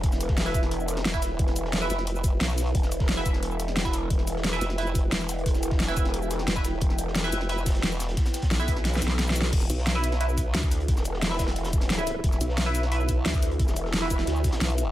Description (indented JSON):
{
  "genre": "dark technical drum and bass",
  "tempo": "177 BPM",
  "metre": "4/4",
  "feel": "straight",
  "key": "E phrygian",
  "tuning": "A4 = 440 Hz",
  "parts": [
    { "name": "deep dark ambient pad", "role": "sustained chords", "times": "0.0-14.9 s", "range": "E4 to G5", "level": "-35 LUFS", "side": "right 1 dB", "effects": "chorus, built-in reverb, sidechain pumping" },
    { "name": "growl bass", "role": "bass", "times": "0.0-14.1 s", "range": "E1 to D2", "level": "-29 LUFS", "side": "equal", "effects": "chorus, overdrive, sidechain pumping" },
    { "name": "crunchy breakbeat drum kit", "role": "drums", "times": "0.0-14.9 s", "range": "hi-hat, snare drum", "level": "-42 LUFS", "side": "equal", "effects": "none" },
    { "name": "dubstep drum kit", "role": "drums", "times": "0.0-14.8 s", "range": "cabasa, crash cymbal, hi-hat, snare drum", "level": "-29 LUFS", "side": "equal", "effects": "overdrive" },
    { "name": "electronic kick drum", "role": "drums", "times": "0.0-14.5 s", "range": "none", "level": "-25 LUFS", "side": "equal", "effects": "overdrive" },
    { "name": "band-passed chord stab", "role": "stabs", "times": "0.5-14.2 s", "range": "E4 to E5", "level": "-33 LUFS", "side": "right 2 dB", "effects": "phaser, lush chorus, digital delay" },
    { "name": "formant-sweep wobble bass", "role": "bass", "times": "1.1-14.9 s", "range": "E1 to D2", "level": "-27 LUFS", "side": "equal", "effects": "chorus, tube saturation" }
  ],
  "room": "little or no reverb",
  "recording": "none",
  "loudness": "-23 LUFS",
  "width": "side -14 dB against mid",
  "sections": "0.0-9.5 A section; 9.5-14.9 A section",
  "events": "drop 0.0-9.5, 9.5-14.9; kick drops out 8.8-9.5; drum fill 8.8-9.5",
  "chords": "0.0 E5"
}